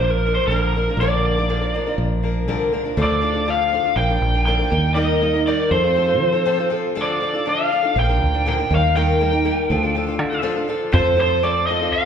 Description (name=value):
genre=folk rock and heartland rock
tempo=120 BPM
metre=4/4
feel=straight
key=unclear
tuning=A4 = 439 Hz
part: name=lead guitar through a small cranked amp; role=melody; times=0.0-12.1 s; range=Bb4 to G5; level=-20 LUFS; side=equal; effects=overdrive
part: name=picked old ladder-braced acoustic guitar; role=accompaniment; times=0.0-12.1 s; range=Bb2 to Bb4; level=-23 LUFS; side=left 1 dB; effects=none
part: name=fingered electric bass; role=bass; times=0.0-12.1 s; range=Bb1 to F3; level=-21 LUFS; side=equal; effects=none
room=wet recital hall reverb, RT60 1.6 s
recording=recorded in a church or concert hall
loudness=-17 LUFS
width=side -7 dB against mid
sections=0.0-3.0 A section; 3.0-10.9 B section; 10.9-12.1 C section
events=none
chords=0.0 Bb; 3.0 Dm; 4.0 Bb; 4.7 Eb; 5.7 F; 7.0 Dm; 8.0 Bb; 8.7 Eb; 9.7 Dm; 10.9 F